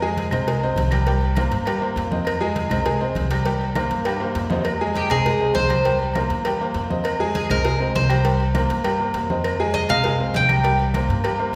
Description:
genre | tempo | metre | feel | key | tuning
latin, salsa | 200 BPM | 4/4 | straight | F minor | A4 = 440 Hz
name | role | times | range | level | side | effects
bright upright piano | accompaniment | 0.0-11.6 s | G3 to Ab5 | -27 LUFS | equal | none
upright bass | bass | 0.0-11.6 s | C2 to G2 | -26 LUFS | equal | none
congas | percussion | 0.0-11.5 s | none | -32 LUFS | equal | none
agogo bells and timbales | percussion | 0.2-11.6 s | none | -30 LUFS | equal | none
cowbell | percussion | 0.2-11.4 s | none | -32 LUFS | equal | none
claves | percussion | 0.3-11.4 s | none | -38 LUFS | equal | none
Cuban tres | melody | 5.0-10.8 s | G4 to G5 | -25 LUFS | equal | none
room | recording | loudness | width
wet scoring stage reverb, RT60 1.8 s | recorded in a church or concert hall | -21 LUFS | mono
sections
0.0-4.7 A section; 4.7-11.6 B section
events
drum fill 4.1-4.7; Cuban tres solo 4.7-11.6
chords
0.0 Fm7; 1.1 C5; 2.3 Fm7; 3.5 C5; 4.7 Fm7; 5.9 C7; 7.1 Fm7; 8.3 C5; 9.4 Fm7; 10.6 C5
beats
0.17 0.47 0.77 | 1.07 1.37 1.67 1.97 | 2.27 2.56 2.86 3.16 | 3.46 3.76 4.06 4.36 | 4.66 4.96 5.26 5.56 | 5.86 6.16 6.46 6.75 | 7.05 7.35 7.65 7.95 | 8.25 8.55 8.85 9.15 | 9.45 9.74 10.04 10.34 | 10.64 10.94 11.24 11.54

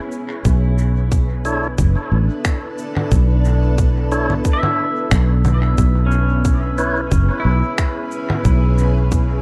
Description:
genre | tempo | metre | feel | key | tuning
ambient dub | 90 BPM | 4/4 | swing 55% on 16ths | B dorian | A4 = 439 Hz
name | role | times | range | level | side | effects
granular cloud pad | sustained chords | 0.0-9.4 s | B3 to C#5 | -28 LUFS | equal | built-in reverb
pedal steel guitar | arpeggios | 0.0-9.4 s | C#4 to E5 | -28 LUFS | equal | dub echo
electronic cabasa, finger snaps and congas | drums | 0.1-9.3 s | none | -28 LUFS | equal | studio reverb, dub echo
fingered electric bass | bass | 0.5-9.4 s | F#1 to B1 | -18 LUFS | equal | none
electronic kick drum | drums | 0.5-9.3 s | none | -20 LUFS | equal | studio reverb
tonewheel organ | stabs | 1.4-7.0 s | D4 to C#5 | -29 LUFS | equal | overdrive, fast rotary speaker, dub echo
room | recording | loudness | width
little or no reverb | echo-heavy mix | -17 LUFS | mono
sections
0.0-9.4 A section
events
none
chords
0.5 Bm11; 5.8 C#m7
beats
| 0.45 1.12 1.78 2.45 | 3.12 3.78 4.45 5.12 | 5.78 6.45 7.12 7.78 | 8.45 9.12

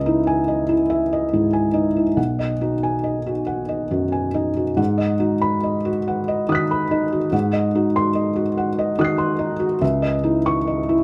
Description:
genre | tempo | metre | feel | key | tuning
neoclassical minimalist piano | 47 BPM (dotted quarters) | 6/8 | rubato | G# minor | A4 = 440 Hz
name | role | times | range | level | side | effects
felt-muted upright piano | solo | 0.0-11.0 s | B1 to B#6 | -20 LUFS | equal | none
room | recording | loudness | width
light reverb | close, detailed microphones | -21 LUFS | mono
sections
0.0-11.0 A section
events
none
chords
0.0 C#madd9; 2.2 B6; 4.8 G#m7; 7.3 G#7; 9.8 C#madd9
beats
0.90 | 2.17 3.48 | 4.79 6.07 | 7.34 8.58 | 9.82

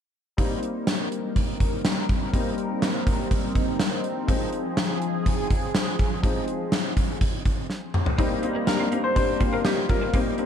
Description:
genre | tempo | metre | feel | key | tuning
1980s-style pop | 123 BPM | 4/4 | straight | C minor | A4 = 440 Hz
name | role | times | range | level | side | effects
clear grand piano | accompaniment | 0.4-10.5 s | F3 to F4 | -29 LUFS | left 3 dB | analog chorus
phased analog pad | sustained chords | 0.7-8.1 s | F3 to Bb4 | -30 LUFS | equal | phaser, chorus
gated 80s drum kit | drums | 0.4-10.5 s | hi-hat, kick drum, snare drum, toms | -24 LUFS | equal | vintage 12-bit sampler grit
electric guitar at the edge of break-up | riff | 8.2-10.4 s | Bb3 to Eb4 | -35 LUFS | right 3 dB | ensemble chorus, analog delay
clear concert grand piano | melody | 8.7-10.5 s | G4 to C5 | -26 LUFS | left 2 dB | wide subtle chorus
room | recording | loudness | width
moderate plate reverb, RT60 2.4 s | dreamy mix soaked in reverb | -22 LUFS | side -8 dB against mid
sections
0.4-8.2 A section; 8.2-10.5 B section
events
drum fill 7.7-8.2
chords
0.4 Cm7; 4.3 Fm7; 8.2 Cm7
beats
| 0.38 0.87 1.36 1.85 | 2.33 2.82 3.31 3.80 | 4.29 4.77 5.26 5.75 | 6.24 6.72 7.21 7.70 | 8.19 8.68 9.16 9.65 | 10.14

